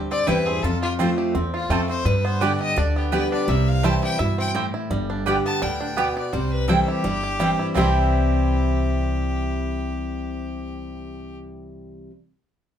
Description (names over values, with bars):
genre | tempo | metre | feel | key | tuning
bluegrass | 169 BPM | 4/4 | swing 53% on 8ths | C major | A4 = 440 Hz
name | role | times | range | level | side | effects
bluegrass banjo | melody | 0.0-12.1 s | G3 to G4 | -30 LUFS | right 3 dB | none
picked steel-string acoustic guitar | accompaniment | 0.0-12.1 s | E2 to G4 | -25 LUFS | left 1 dB | none
upright bass | bass | 0.0-12.1 s | G1 to G2 | -25 LUFS | right 1 dB | none
bright fiddle | melody | 0.1-11.4 s | F4 to A5 | -28 LUFS | left 2 dB | none
mandolin | stabs | 0.3-12.1 s | B3 to A5 | -26 LUFS | right 3 dB | none
room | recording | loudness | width
wet studio reverb, RT60 0.5 s | heard from further back in the room | -20 LUFS | side -9 dB against mid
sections
0.0-4.9 A section; 4.9-7.8 B section; 7.8-10.6 C section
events
none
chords
0.0 C; 0.6 F; 2.1 G; 3.5 C; 4.9 G; 6.3 C